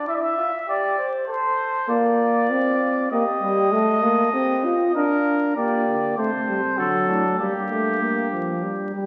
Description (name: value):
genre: classical, imitative canzona for brass ensemble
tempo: 98 BPM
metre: 3/4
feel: straight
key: Bb major, G minor from 5.6 s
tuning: A4 = 440 Hz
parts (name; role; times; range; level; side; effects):
- warm trumpet; melody; 0.0-8.9 s; G4 to E5; -26 LUFS; equal; none
- mellow flugelhorn; second line; 0.0-8.9 s; Bb3 to C5; -31 LUFS; equal; none
- warm euphonium; accompaniment; 1.9-9.1 s; F3 to F4; -24 LUFS; equal; none
- mellow tuba; bass; 5.6-8.9 s; G2 to D3; -33 LUFS; equal; none
room: wet scoring stage reverb, RT60 1.5 s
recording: very old 78 rpm record, vinyl crackle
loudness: -22 LUFS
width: mono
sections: 0.0-5.6 A section; 5.6-9.1 B section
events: none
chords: 0.1 C/E; 1.3 Am; 1.9 Bb; 3.1 Eb/Bb; 3.7 F/A; 4.9 Bb/D; 5.6 Gm/Bb; 6.2 Am7/C; 6.8 D; 7.4 Gm